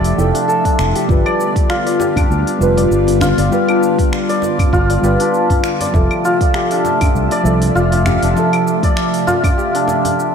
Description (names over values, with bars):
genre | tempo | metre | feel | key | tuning
organic downtempo | 99 BPM | 4/4 | swing 55% on 16ths | G mixolydian | A4 = 440 Hz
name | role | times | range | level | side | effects
muted felt-like synth keys | accompaniment | 0.0-10.3 s | F3 to E5 | -20 LUFS | left 1 dB | chorus, phaser, sidechain pumping, ping-pong delay
airy breathy pad | sustained chords | 0.0-10.3 s | C3 to E5 | -20 LUFS | equal | chorus, sidechain pumping
santur | arpeggios | 0.0-10.3 s | D4 to G5 | -17 LUFS | equal | ping-pong delay, slapback echo
fretless electric bass | bass | 0.0-8.3 s | F1 to D2 | -17 LUFS | equal | none
deep house drum kit | drums | 0.0-10.3 s | claves, finger snaps, hi-hat, shaker | -27 LUFS | left 1 dB | none
electronic kick drum | drums | 0.7-9.5 s | none | -16 LUFS | equal | none
djembe | percussion | 1.1-10.2 s | none | -24 LUFS | left 1 dB | none
room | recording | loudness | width
moderate lush hall reverb, RT60 1.8 s, digital ambience | big arena sound | -12 LUFS | side -7 dB against mid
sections
0.0-10.3 A section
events
none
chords
0.0 Fmaj7; 1.1 G7; 5.9 Fmaj7